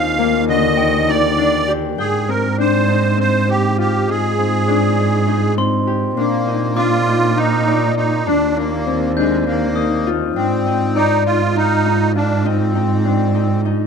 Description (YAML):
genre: contemporary instrumental, chamber music in an uneven meter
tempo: 201 BPM (eighths)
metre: 7/8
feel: straight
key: Ab lydian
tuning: A4 = 440 Hz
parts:
  - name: musette accordion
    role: melody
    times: 0.0-13.6 s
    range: Ab3 to F5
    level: -19 LUFS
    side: right 3 dB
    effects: none
  - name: Celtic harp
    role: arpeggios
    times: 0.0-13.9 s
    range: D3 to G5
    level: -19 LUFS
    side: left 8 dB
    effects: none
  - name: warm cello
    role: bass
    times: 0.0-13.9 s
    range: Eb2 to Bb2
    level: -19 LUFS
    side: right 4 dB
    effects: none
  - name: glockenspiel with soft plastic mallets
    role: texture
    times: 0.8-2.2, 5.6-10.6 s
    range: G5 to G6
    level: -29 LUFS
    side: left 1 dB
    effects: none
room: light reverb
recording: close, detailed microphones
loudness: -14 LUFS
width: side -6 dB against mid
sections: 0.0-6.2 A section; 6.2-13.9 B section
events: none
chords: 0.0 Ebmaj7; 2.0 Abmaj7; 6.2 Bbsus4; 8.3 Ebmaj7; 10.4 Ab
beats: 0.18 0.48 0.78 1.08 1.38 1.68 | 1.98 2.28 2.58 2.88 3.18 3.48 3.78 | 4.08 4.38 4.68 4.98 5.28 5.58 5.88 | 6.18 6.48 6.78 7.08 7.38 7.67 7.97 | 8.27 8.57 8.87 9.17 9.47 9.77 10.07 | 10.37 10.66 10.96 11.26 11.56 11.86 12.16 | 12.46 12.76 13.05 13.35 13.65